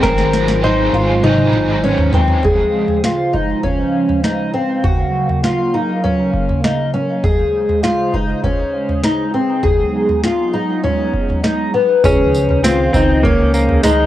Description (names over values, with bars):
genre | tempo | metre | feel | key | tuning
dream pop | 100 BPM | 4/4 | straight | Db major | A4 = 440 Hz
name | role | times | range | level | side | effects
direct-recorded clean electric guitar | melody | 0.0-2.1, 12.1-14.1 s | Ab3 to C5 | -18 LUFS | right 1 dB | cassette tape, tape echo
biting overdriven guitar | accompaniment | 0.0-3.0 s | Ab2 to Ab4 | -23 LUFS | right 2 dB | tremolo, analog chorus
hollow soft pad | sustained chords | 0.0-14.1 s | Db3 to F5 | -22 LUFS | right 1 dB | ensemble chorus
fingerpicked twelve-string acoustic guitar | arpeggios | 0.0-14.1 s | Cb4 to Ab4 | -17 LUFS | left 1 dB | wide subtle chorus, tape echo
chorused synth bass | bass | 0.0-2.1, 12.0-14.1 s | Ab1 to Db2 | -18 LUFS | equal | none
booming analog drum machine | drums | 0.0-14.0 s | kick drum, snare drum, tambourine, toms | -18 LUFS | equal | overdrive
room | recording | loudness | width
moderate booth ambience, RT60 0.2 s | home recording on cassette | -13 LUFS | side -13 dB against mid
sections
0.0-2.4 A section; 2.4-12.0 B section; 12.0-14.1 A section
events
drum fill 0.0-2.4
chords
0.0 Ab7; 2.4 Dbmaj7; 4.8 Gbmaj7; 7.2 Dbmaj7; 9.6 Cb6; 12.0 Dbmaj9